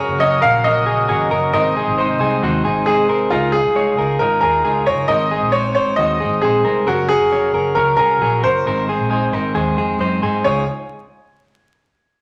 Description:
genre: indie pop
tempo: 135 BPM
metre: 4/4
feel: straight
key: Db major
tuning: A4 = 441 Hz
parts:
  - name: bright upright piano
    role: melody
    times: 0.0-10.7 s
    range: F4 to F5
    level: -19 LUFS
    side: equal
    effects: none
  - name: electric guitar at the edge of break-up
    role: accompaniment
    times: 0.0-10.6 s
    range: Ab2 to C5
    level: -24 LUFS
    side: equal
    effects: none
  - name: phased analog pad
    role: sustained chords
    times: 0.0-3.3 s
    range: C3 to Gb4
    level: -31 LUFS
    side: equal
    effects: none
  - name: direct-recorded clean electric guitar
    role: arpeggios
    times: 0.0-10.7 s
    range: Gb4 to Db5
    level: -25 LUFS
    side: equal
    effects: none
  - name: vintage muted fingered electric bass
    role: bass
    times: 0.1-10.7 s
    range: F1 to Ab2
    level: -27 LUFS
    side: equal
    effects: none
room: wet large studio reverb, RT60 1.2 s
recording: vinyl crackle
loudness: -17 LUFS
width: mono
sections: 0.0-3.3 A section; 3.3-10.4 B section; 10.4-12.2 C section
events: none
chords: 0.0 Gb; 1.5 Ab; 3.3 Dbadd9; 5.1 Ab; 6.9 Gb; 8.7 Ab; 10.4 Dbadd9

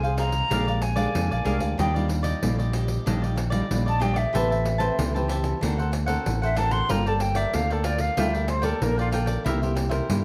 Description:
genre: samba and choro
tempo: 94 BPM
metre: 4/4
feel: straight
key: unclear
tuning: A4 = 441 Hz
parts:
  - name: silver concert flute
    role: second line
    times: 0.0-9.1 s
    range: F4 to C6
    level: -30 LUFS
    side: equal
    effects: none
  - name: cavaquinho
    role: accompaniment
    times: 0.0-10.2 s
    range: D4 to A5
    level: -33 LUFS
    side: equal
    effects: none
  - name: nylon-string guitar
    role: accompaniment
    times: 0.0-10.2 s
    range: G2 to C5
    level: -32 LUFS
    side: equal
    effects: none
  - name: fingered electric bass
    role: bass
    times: 0.0-10.2 s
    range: G1 to G2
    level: -28 LUFS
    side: equal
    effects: none
  - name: pandeiro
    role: percussion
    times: 0.0-10.2 s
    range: none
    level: -34 LUFS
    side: equal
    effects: none
room: moderate studio reverb, RT60 0.8 s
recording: dark, warm production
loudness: -24 LUFS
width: mono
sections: 0.0-10.2 A section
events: flute solo 0.0-10.2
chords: 0.0 Fm7; 0.5 Bb13; 1.8 Ebmaj9; 4.3 Am9; 5.6 D7b13; 6.9 Gm9; 9.5 C7

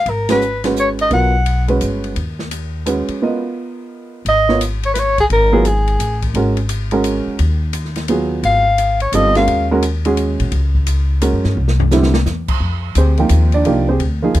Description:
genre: modal jazz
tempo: 172 BPM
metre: 3/4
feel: swing 65% on 8ths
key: unclear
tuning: A4 = 438 Hz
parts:
  - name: mellow soprano saxophone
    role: melody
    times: 0.0-1.7, 4.3-6.2, 8.5-9.7 s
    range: G#4 to Gb5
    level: -15 LUFS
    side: left 1 dB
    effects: none
  - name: upright bass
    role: bass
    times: 0.1-14.4 s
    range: G1 to G2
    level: -17 LUFS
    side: equal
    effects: none
  - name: open jazz drum kit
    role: drums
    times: 0.1-14.4 s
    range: crash cymbal, hi-hat, kick drum, ride cymbal, snare drum, toms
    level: -25 LUFS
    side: left 1 dB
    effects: none
  - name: warm upright piano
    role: accompaniment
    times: 0.3-14.4 s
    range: D3 to G5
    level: -17 LUFS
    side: right 3 dB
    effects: none
room: little or no reverb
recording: dry, close 1970s-style studio recording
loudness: -14 LUFS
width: side -14 dB against mid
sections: 0.0-4.3 A section; 4.3-12.6 B section; 12.6-14.4 C section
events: band accent 0.2; drum fill 11.6-12.3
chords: 0.1 Abm9; 4.3 G#13sus4; 11.6 C; 12.6 Fm9

